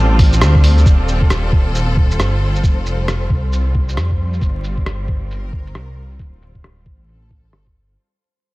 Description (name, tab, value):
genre	future garage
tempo	135 BPM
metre	4/4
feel	swing 62% on 16ths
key	unclear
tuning	A4 = 440 Hz
part	clear studio string section	sustained chords	0.0-8.0 s	G3 to Bb4	-25 LUFS	equal	sidechain pumping
part	dark detuned saw bass	bass	0.0-8.0 s	D1 to F2	-16 LUFS	equal	sidechain pumping
part	wind-like tuned noise texture	texture	0.0-8.0 s	C5 to D5	-33 LUFS	left 1 dB	built-in reverb
part	electronic kick drum	drums	0.2-7.7 s	none	-14 LUFS	equal	studio reverb
part	lo-fi sampler-style drum kit	drums	0.2-8.0 s	hi-hat, rim click, shaker	-22 LUFS	equal	low-pass filter on snare, studio reverb, low-pass filter on perc, low-pass filter on hats
room	digital ambience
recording	vinyl crackle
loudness	-13 LUFS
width	side -20 dB against mid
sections	0.9-8.0 A section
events	band accent 0.4; fade-out 0.9-8.0; filter sweep on drum 0.9-8.0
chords	0.0 Dsus4; 0.9 Ebadd9; 2.6 F; 4.4 Gm; 6.2 Dsus4